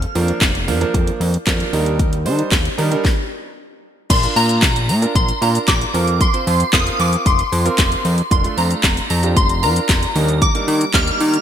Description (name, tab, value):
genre	dance-pop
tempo	114 BPM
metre	4/4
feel	straight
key	Bb major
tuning	A4 = 436 Hz
part	fat analog bass	bass	0.0-11.4 s	F1 to Eb3	-18 LUFS	left 1 dB	sidechain pumping
part	house drum kit	drums	0.0-11.4 s	crash cymbal, handclaps, hi-hat, kick drum, shaker, snare drum	-18 LUFS	equal	gated reverb
part	clear concert grand piano	accompaniment	0.1-11.4 s	F3 to C5	-23 LUFS	right 4 dB	sidechain pumping
part	shimmering bell with halo	melody	4.1-11.4 s	Bb5 to F6	-20 LUFS	equal	ensemble chorus, phaser, digital delay
room	light reverb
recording	bright 1980s-style digital production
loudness	-14 LUFS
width	side -9 dB against mid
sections	0.0-4.1 A section; 4.1-11.4 B section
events	stop 3.0-4.1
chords	0.0 Bb/F; 1.7 Ebmaj7; 3.0 N.C.; 4.1 Bb; 5.9 Fsus4; 8.3 Bb/F; 10.2 Ebmaj7